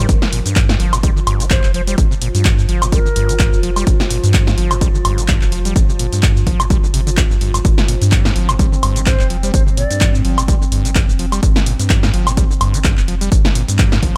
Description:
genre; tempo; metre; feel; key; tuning
acid house; 127 BPM; 4/4; swing 56% on 16ths; G minor; A4 = 444 Hz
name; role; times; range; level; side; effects
warbly tape-like pad; sustained chords; 0.0-14.2 s; F3 to Bb4; -30 LUFS; equal; chorus, built-in reverb, phaser, sidechain pumping
acid bass, saw; riff; 0.0-14.2 s; G2 to G3; -25 LUFS; equal; overdrive, cassette tape
round analog bass; bass; 0.0-14.2 s; F1 to G2; -21 LUFS; equal; sidechain pumping
electronic kick drum; drums; 0.1-14.1 s; none; -17 LUFS; equal; none
punchy analog drum machine; drums; 0.1-14.1 s; handclaps, hi-hat, shaker, snare drum, woodblock; -22 LUFS; equal; none
mellow hollow silver concert flute; melody; 1.5-3.6, 9.1-10.1 s; Bb4 to D5; -28 LUFS; equal; digital delay
room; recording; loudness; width
digital ambience; none; -15 LUFS; mono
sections
0.0-14.2 A section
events
none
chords
0.0 G7(no3)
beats
| 0.09 0.56 1.03 1.51 | 1.98 2.45 2.92 3.40 | 3.87 4.34 4.81 5.29 | 5.76 6.23 6.70 7.18 | 7.65 8.12 8.59 9.06 | 9.54 10.01 10.48 10.96 | 11.43 11.90 12.37 12.85 | 13.32 13.79

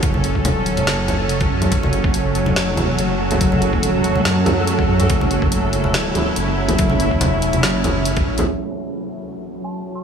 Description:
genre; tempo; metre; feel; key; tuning
deep dubstep; 142 BPM; 4/4; half-time; F# minor; A4 = 439 Hz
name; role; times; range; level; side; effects
bowed-like drone; sustained chords; 0.0-10.0 s; F#3 to A4; -21 LUFS; right 1 dB; built-in reverb
dark detuned saw bass; bass; 0.0-8.5 s; F#1 to F#2; -21 LUFS; equal; none
deep house drum kit; drums; 0.0-9.8 s; hi-hat, snare drum; -25 LUFS; left 1 dB; low-pass filter on hats, low-pass filter on cymbals, low-pass filter on snare
electronic kick drum; drums; 0.0-8.2 s; none; -21 LUFS; equal; overdrive
congas; percussion; 0.1-8.5 s; none; -24 LUFS; equal; dub echo
flickering grainy texture; texture; 2.2-8.5 s; A3 to A4; -27 LUFS; equal; built-in reverb, analog chorus
dark detuned synth bell; melody; 9.6-10.0 s; A5 to C#6; -33 LUFS; right 3 dB; chorus, dub echo
room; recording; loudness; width
moderate huge ambient reverb, RT60 7.9 s; dreamy mix soaked in reverb, low-pass filter, studio reverb; -15 LUFS; side -7 dB against mid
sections
0.0-8.5 A section; 8.5-10.0 B section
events
filter sweep on synth drone 8.5-10.0; filter sweep 8.5-10.0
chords
0.0 F#5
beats
| 0.03 0.45 0.87 1.29 | 1.72 2.14 2.56 2.98 | 3.41 3.83 4.25 4.68 | 5.10 5.52 5.94 6.37 | 6.79 7.21 7.63 8.06 | 8.48 8.90 9.32 9.75

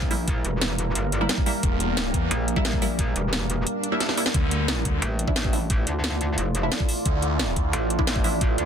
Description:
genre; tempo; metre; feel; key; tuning
dark technical drum and bass; 177 BPM; 4/4; straight; D minor; A4 = 440 Hz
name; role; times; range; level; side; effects
deep dark ambient pad; sustained chords; 0.0-8.7 s; G3 to D5; -29 LUFS; right 1 dB; chorus, built-in reverb, vintage 12-bit sampler grit, sidechain pumping
filtered dub chord stab; stabs; 0.0-8.3 s; F3 to E4; -30 LUFS; right 1 dB; phaser, lush chorus, dub echo
metallic wobble bass; bass; 0.0-8.7 s; E1 to D2; -26 LUFS; equal; chorus
electronic kick drum; drums; 0.0-8.5 s; none; -25 LUFS; equal; none
drum and bass drum kit; drums; 0.1-8.6 s; hi-hat, snare drum; -27 LUFS; equal; none
phased detuned saw bass; bass; 1.6-2.3, 4.3-5.0, 7.1-7.7 s; E1 to E2; -25 LUFS; equal; phaser, overdrive, sidechain pumping
swell; sound effects; 3.8-4.3 s; none; -33 LUFS; left 1 dB; none
room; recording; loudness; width
light reverb; dense, heavily limited modern master; -22 LUFS; side -8 dB against mid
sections
0.0-8.7 A section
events
swell 3.8-4.3; drum fill 4.0-4.3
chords
0.0 Edim; 4.3 Dmadd9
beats
| 0.28 0.61 0.95 1.29 | 1.63 1.97 2.31 2.65 | 2.99 3.33 3.67 4.00 | 4.34 4.68 5.02 5.36 | 5.70 6.04 6.38 6.72 | 7.05 7.39 7.73 8.07 | 8.41

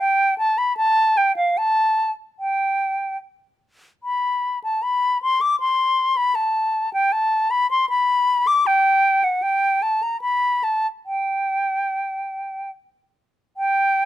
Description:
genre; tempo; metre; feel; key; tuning
classical, baroque-style fantasia for unaccompanied flute; 71-79 BPM; 3/4; rubato; G major from 4.0 s; A4 = 438 Hz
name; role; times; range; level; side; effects
silver concert flute; solo; 0.0-14.1 s; F5 to D6; -18 LUFS; equal; none
room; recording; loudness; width
little or no reverb; close, detailed microphones; -18 LUFS; side -13 dB against mid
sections
0.0-13.6 A section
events
none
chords
none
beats
0.00 0.79 | 1.59 2.40 3.22 | 4.04 4.83 5.60 | 6.37 7.13 7.89 | 8.65 9.42 10.22 | 11.06 11.90 12.74 | 13.56

